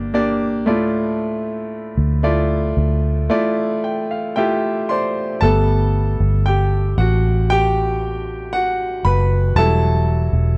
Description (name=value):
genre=pop ballad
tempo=58 BPM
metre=4/4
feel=straight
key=G major from 5.4 s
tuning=A4 = 438 Hz
part: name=clear baby grand piano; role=accompaniment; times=0.0-10.6 s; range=A2 to C6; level=-21 LUFS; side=equal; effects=none
part: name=vintage muted fingered electric bass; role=bass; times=0.0-10.6 s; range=E1 to D2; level=-20 LUFS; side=equal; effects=none
room=little or no reverb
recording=dry, close 1970s-style studio recording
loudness=-18 LUFS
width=mono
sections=0.0-5.4 A section; 5.4-10.6 B section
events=grand piano fill 3.3-5.4; grand piano solo 5.4-10.6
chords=0.0 Gm; 0.7 Dmadd9; 5.4 Gadd9; 9.6 Emadd9